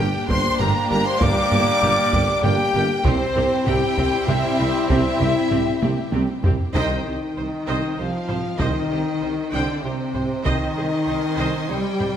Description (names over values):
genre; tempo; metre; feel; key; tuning
cinematic, epic orchestral film score; 98 BPM; 3/4; straight; C minor from 6.7 s; A4 = 441 Hz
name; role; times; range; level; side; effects
warm symphonic violin section; melody; 0.0-12.2 s; C5 to D6; -31 LUFS; left 4 dB; none
rich symphonic violin section; second line; 0.0-12.2 s; C5 to D6; -31 LUFS; left 1 dB; none
silver concert flute; second line; 0.0-6.1 s; C5 to D6; -27 LUFS; left 1 dB; none
rich symphonic viola section; accompaniment; 0.0-12.1 s; Bb3 to G5; -30 LUFS; right 1 dB; none
clear trombone section; sustained chords; 0.0-12.2 s; C3 to C4; -30 LUFS; right 2 dB; none
dark French horn section; sustained chords; 0.0-12.2 s; C4 to D5; -25 LUFS; left 4 dB; none
rich studio string section; sustained chords; 0.0-12.2 s; Bb3 to C6; -30 LUFS; equal; none
mellow tuba; bass; 0.0-12.1 s; G1 to C2; -29 LUFS; right 3 dB; none
warm symphonic cello section; bass; 0.0-12.2 s; G2 to G3; -29 LUFS; right 2 dB; none
warm symphonic double bass section; bass; 0.0-12.1 s; G1 to C2; -28 LUFS; right 3 dB; none
taiko ensemble; drums; 0.3-12.2 s; none; -25 LUFS; equal; none
room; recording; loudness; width
moderate scoring stage reverb, RT60 1.5 s; none; -18 LUFS; side -9 dB against mid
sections
0.0-6.7 A section; 6.7-12.2 B section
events
drum fill 5.8-6.7; band accent 6.7-7.4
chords
0.0 Gm; 3.1 C; 6.7 Cm; 10.5 Ab/C